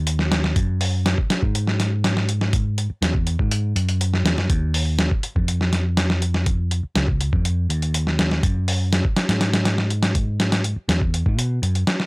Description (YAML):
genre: breakbeat, breaks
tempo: 122 BPM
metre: 4/4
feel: straight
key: unclear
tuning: A4 = 440 Hz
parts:
  - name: picked electric bass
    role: bass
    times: 0.0-11.8 s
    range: Db2 to Cb3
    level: -21 LUFS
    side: equal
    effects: none
  - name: dusty soul sampler-style drum kit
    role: drums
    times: 0.1-12.1 s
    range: hi-hat, kick drum, snare drum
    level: -21 LUFS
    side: equal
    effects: none
room: little or no reverb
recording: dry, gritty hardware recording, transformer saturation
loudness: -18 LUFS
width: side -29 dB against mid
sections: 0.0-12.1 A section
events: none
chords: none